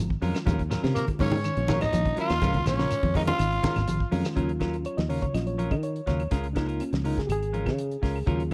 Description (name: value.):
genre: afrobeat.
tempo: 123 BPM.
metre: 4/4.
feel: straight.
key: Eb minor.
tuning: A4 = 440 Hz.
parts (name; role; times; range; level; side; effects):
semi-hollow electric guitar; arpeggios; 0.0-8.4 s; Db3 to Gb3; -36 LUFS; equal; ensemble chorus.
fingered electric bass; bass; 0.0-8.5 s; Ab1 to Eb3; -31 LUFS; equal; none.
damped 70s drum kit; drums; 0.1-8.5 s; hi-hat, kick drum, snare drum; -33 LUFS; equal; none.
reed electric piano; accompaniment; 0.2-8.5 s; Eb3 to Eb5; -35 LUFS; equal; overdrive, fast tremolo.
clean electric guitar; stabs; 0.2-8.5 s; Gb3 to Bb4; -38 LUFS; equal; none.
shekere; percussion; 0.2-4.4 s; none; -37 LUFS; equal; none.
claves; percussion; 0.3-8.5 s; none; -49 LUFS; equal; none.
congas; percussion; 0.5-4.0 s; none; -33 LUFS; equal; none.
growling tenor saxophone; melody; 0.9-4.1 s; Bb3 to F4; -32 LUFS; equal; tape echo.
growling trumpet; second line; 1.0-4.1 s; Bb4 to F5; -37 LUFS; equal; none.
room: small room reverb.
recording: dry, close 1970s-style studio recording.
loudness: -27 LUFS.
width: mono.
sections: 0.0-4.4 A section; 4.4-8.5 B section.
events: reed electric piano solo 4.4-8.5.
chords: 0.5 Ebm9; 2.4 Db6; 4.4 Ebm9; 6.3 Db6.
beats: | 0.47 0.95 1.44 1.93 | 2.41 2.90 3.39 3.87 | 4.36 4.85 5.34 5.83 | 6.31 6.80 7.29 7.78 | 8.27.